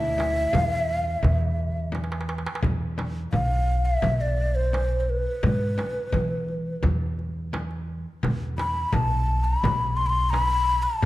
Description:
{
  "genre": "Arabic maqam ensemble",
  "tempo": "86 BPM",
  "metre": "4/4",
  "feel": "straight",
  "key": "E maqam hijaz",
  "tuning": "A4 = 439 Hz",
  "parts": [
    { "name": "breathy mellow ney", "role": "melody", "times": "0.0-11.1 s", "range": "B4 to C6", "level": "-26 LUFS", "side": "left 1 dB", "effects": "none" },
    { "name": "oud", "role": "second line", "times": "0.0-1.9 s", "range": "E4", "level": "-35 LUFS", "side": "right 3 dB", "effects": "none" },
    { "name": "upright bass", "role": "bass", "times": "0.0-11.1 s", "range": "B1 to E3", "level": "-26 LUFS", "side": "equal", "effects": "none" },
    { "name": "darbuka", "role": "percussion", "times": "0.2-11.1 s", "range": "none", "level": "-32 LUFS", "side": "right 2 dB", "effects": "none" },
    { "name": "frame drum", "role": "percussion", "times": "0.2-11.1 s", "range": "none", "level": "-31 LUFS", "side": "left 2 dB", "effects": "none" }
  ],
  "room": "moderate recital hall reverb, RT60 1.7 s",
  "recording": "dark, warm production",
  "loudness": "-22 LUFS",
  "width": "side -16 dB against mid",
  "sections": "0.0-2.6 A section; 2.6-11.1 B section",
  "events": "drum fill 1.9-2.6",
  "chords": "none",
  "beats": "0.54 1.24 1.94 | 2.64 3.34 4.04 4.74 | 5.44 6.14 6.84 7.54 | 8.24 8.93 9.63 10.33 | 11.03"
}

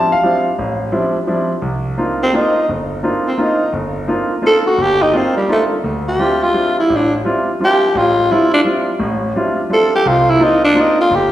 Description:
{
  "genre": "jazz",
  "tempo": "171 BPM",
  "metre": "3/4",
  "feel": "swing 64% on 8ths",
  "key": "C dorian",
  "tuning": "A4 = 440 Hz",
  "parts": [
    { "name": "clear concert grand piano", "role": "accompaniment", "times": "0.0-11.3 s", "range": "G1 to F5", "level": "-16 LUFS", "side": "equal", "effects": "none" },
    { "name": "growling tenor saxophone", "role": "melody", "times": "2.2-11.3 s", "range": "G3 to A4", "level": "-13 LUFS", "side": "equal", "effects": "none" }
  ],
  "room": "wet recital hall reverb, RT60 1.6 s",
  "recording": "recorded in a church or concert hall",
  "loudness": "-13 LUFS",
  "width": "side -13 dB against mid",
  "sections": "0.0-1.6 A section; 1.6-11.3 A section",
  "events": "tenor saxophone solo 1.6-11.3",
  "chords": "0.0 Dm11; 1.6 Cm11; 5.8 Dm11; 10.1 Cm11",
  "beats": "0.23 | 0.58 0.93 1.27 | 1.62 1.98 2.33 | 2.67 3.03 3.38 | 3.73 4.08 4.43 | 4.78 5.13 5.48 | 5.83 6.19 6.54 | 6.89 7.24 7.59 | 7.94 8.29 8.65 | 9.00 9.35 9.70 | 10.05 10.40 10.75 | 11.10"
}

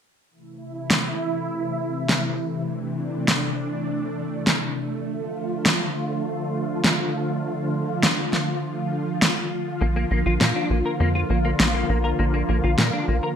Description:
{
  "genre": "synthwave",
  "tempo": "101 BPM",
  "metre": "4/4",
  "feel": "straight",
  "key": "A phrygian",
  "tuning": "A4 = 441 Hz",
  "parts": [
    { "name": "analog string pad", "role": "sustained chords", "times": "0.3-13.4 s", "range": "C3 to F4", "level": "-25 LUFS", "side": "equal", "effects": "ensemble chorus, vintage 12-bit sampler grit" },
    { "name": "electronic snare drum", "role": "drums", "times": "0.9-12.9 s", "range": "none", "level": "-20 LUFS", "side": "equal", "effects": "gated reverb" },
    { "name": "clean electric guitar", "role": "riff", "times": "9.8-13.3 s", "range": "Bb3 to Bb4", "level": "-27 LUFS", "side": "left 2 dB", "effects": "ensemble chorus, digital delay" },
    { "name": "tight sequencer bass", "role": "bass", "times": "9.8-13.2 s", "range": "Bb1 to Bb2", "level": "-22 LUFS", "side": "equal", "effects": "none" }
  ],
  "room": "moderate plate reverb, RT60 1.3 s, digital ambience",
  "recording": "bright 1980s-style digital production",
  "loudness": "-21 LUFS",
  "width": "side -8 dB against mid",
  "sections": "0.3-13.4 A section",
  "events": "none",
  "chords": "0.3 Am; 5.1 Dm; 9.8 Bb",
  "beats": "| 0.31 0.90 1.50 2.09 | 2.69 3.28 3.87 4.47 | 5.06 5.66 6.25 6.84 | 7.44 8.03 8.63 9.22 | 9.81 10.41 11.00 11.60 | 12.19 12.79"
}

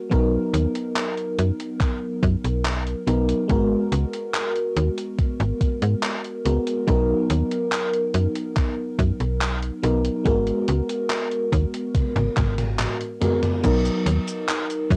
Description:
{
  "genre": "vaporwave",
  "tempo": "71 BPM",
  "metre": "4/4",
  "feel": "straight",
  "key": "unclear",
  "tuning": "A4 = 440 Hz",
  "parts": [
    { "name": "FM electric piano with soft pad layer", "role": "accompaniment", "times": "0.0-15.0 s", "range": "F#3 to A#4", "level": "-26 LUFS", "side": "equal", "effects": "tremolo, subtle chorus, cassette tape, tape echo" },
    { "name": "slap-like FM bass", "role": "bass", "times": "0.1-15.0 s", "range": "G#1 to G#2", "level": "-25 LUFS", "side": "equal", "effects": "none" },
    { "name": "electronic kick drum", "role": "drums", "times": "0.1-15.0 s", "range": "none", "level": "-24 LUFS", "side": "equal", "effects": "cassette tape" },
    { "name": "gated 80s digital drum machine", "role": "drums", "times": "0.1-15.0 s", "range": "cabasa, crash cymbal, handclaps, hi-hat, toms", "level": "-30 LUFS", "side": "equal", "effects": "gated reverb, cassette tape" }
  ],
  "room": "light reverb",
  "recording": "home recording on cassette",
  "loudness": "-23 LUFS",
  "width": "mono",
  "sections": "0.0-13.6 A section; 13.6-15.0 B section",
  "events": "drum fill 11.9-13.6",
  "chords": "0.1 Bmaj7; 3.5 G#m9; 6.9 Bmaj7; 10.3 G#m9; 13.6 Bmaj7",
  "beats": "| 0.12 0.96 1.81 2.65 | 3.50 4.34 5.19 6.03 | 6.88 7.72 8.57 9.41 | 10.26 11.10 11.95 12.79 | 13.64 14.48"
}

